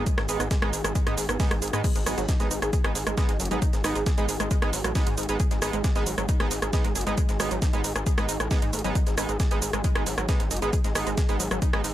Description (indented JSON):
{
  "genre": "driving peak-time techno",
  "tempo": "135 BPM",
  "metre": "4/4",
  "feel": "straight",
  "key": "G# minor",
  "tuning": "A4 = 440 Hz",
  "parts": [
    { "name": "sync-sweep polysynth", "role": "stabs", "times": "0.0-11.8 s", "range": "G#3 to D#4", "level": "-33 LUFS", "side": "right 4 dB", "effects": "chorus, sidechain pumping, ping-pong delay" },
    { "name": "gritty driven synth bass", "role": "bass", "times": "0.0-11.9 s", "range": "F#1 to G#2", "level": "-30 LUFS", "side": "equal", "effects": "sidechain pumping" },
    { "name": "metallic inharmonic drone", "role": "drone", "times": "0.0-1.9 s", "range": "G#2 to D#3", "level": "-43 LUFS", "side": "left 1 dB", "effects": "none" },
    { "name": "wide unison pluck", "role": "riff", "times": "0.1-11.9 s", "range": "F#3 to G#4", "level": "-32 LUFS", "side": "right 1 dB", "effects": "overdrive, auto-pan, sidechain pumping, tape echo" },
    { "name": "breakbeat sampler-style drum kit", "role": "drums", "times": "0.1-11.9 s", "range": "hi-hat, snare drum", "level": "-39 LUFS", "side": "right 1 dB", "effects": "high-pass filter on snare, sidechain pumping on hats, high-pass filter on hats" },
    { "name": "electronic kick drum", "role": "drums", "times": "0.1-11.7 s", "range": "none", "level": "-25 LUFS", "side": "equal", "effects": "none" },
    { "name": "punchy analog drum machine", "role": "drums", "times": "0.1-11.9 s", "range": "crash cymbal, hi-hat, rim click, shaker", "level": "-30 LUFS", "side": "right 1 dB", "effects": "none" }
  ],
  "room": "little or no reverb",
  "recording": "none",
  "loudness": "-23 LUFS",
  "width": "side -13 dB against mid",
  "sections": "0.0-1.8 A section; 1.8-11.9 A section",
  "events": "drop 0.0-1.8, 1.8-11.9",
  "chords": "0.0 G#m"
}